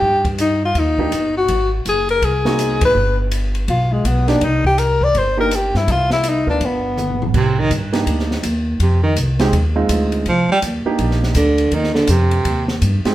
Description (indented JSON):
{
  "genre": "jazz, small-group swing and bop",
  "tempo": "164 BPM",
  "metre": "4/4",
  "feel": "swing 63% on 8ths",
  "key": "C minor",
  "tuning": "A4 = 440 Hz",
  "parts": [
    { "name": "breathy tenor saxophone", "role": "melody", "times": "0.0-7.3 s", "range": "Ab3 to D5", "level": "-17 LUFS", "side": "left 2 dB", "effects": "plate reverb" },
    { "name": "upright bass", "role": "bass", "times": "0.0-13.1 s", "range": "Gb1 to G2", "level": "-19 LUFS", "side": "equal", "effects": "none" },
    { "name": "open jazz drum kit", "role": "drums", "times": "0.2-13.1 s", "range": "crash cymbal, hi-hat, kick drum, ride cymbal, snare drum, toms", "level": "-24 LUFS", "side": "right 1 dB", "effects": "none" },
    { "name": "clear upright piano", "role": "accompaniment", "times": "1.0-13.1 s", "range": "Ab3 to Bb4", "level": "-21 LUFS", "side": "right 4 dB", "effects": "none" },
    { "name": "breathy baritone saxophone", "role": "second line", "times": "7.4-12.7 s", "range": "C3 to G3", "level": "-17 LUFS", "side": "right 2 dB", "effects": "none" }
  ],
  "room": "wet studio reverb, RT60 0.8 s",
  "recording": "heard from further back in the room",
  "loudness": "-14 LUFS",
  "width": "side -14 dB against mid",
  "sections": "0.0-7.3 A section; 7.3-13.1 B section",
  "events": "band accent 2.8; drum fill 7.0-7.3; baritone saxophone solo 7.3-13.1",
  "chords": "0.0 Cm (rootless); 1.5 Ab7; 3.0 G; 4.4 C7sus2; 6.6 G7#9; 7.3 Cm9; 8.8 Fm7; 10.3 Cm9"
}